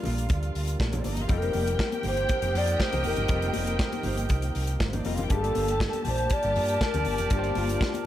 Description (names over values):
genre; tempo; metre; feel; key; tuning
disco; 120 BPM; 4/4; straight; unclear; A4 = 440 Hz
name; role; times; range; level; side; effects
mellow hollow alto flute; melody; 0.0-8.1 s; F4 to D5; -30 LUFS; left 1 dB; none
dark studio string section; second line; 0.0-8.1 s; A3 to A5; -34 LUFS; left 1 dB; none
clear grand piano; accompaniment; 0.0-8.1 s; G3 to C5; -39 LUFS; left 8 dB; none
mellow electric guitar; accompaniment; 0.0-8.0 s; Bb3 to F5; -39 LUFS; right 4 dB; spring reverb
mellow French horn section; sustained chords; 0.0-8.1 s; F3 to G4; -39 LUFS; right 2 dB; none
dark horn section; stabs; 0.0-8.1 s; Bb3 to F5; -35 LUFS; right 3 dB; none
congas; percussion; 0.0-8.1 s; none; -36 LUFS; left 4 dB; none
fingered electric bass; bass; 0.1-7.8 s; F1 to G2; -29 LUFS; equal; none
modern studio drum kit; drums; 0.1-8.1 s; hi-hat, kick drum, snare drum; -30 LUFS; equal; none
room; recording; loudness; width
little or no reverb; none; -24 LUFS; side -12 dB against mid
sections
0.0-8.1 A section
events
none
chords
0.0 F9sus4; 5.3 Gm9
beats
0.30 0.80 | 1.30 1.80 2.30 2.80 | 3.30 3.80 4.30 4.81 | 5.31 5.81 6.31 6.81 | 7.31 7.81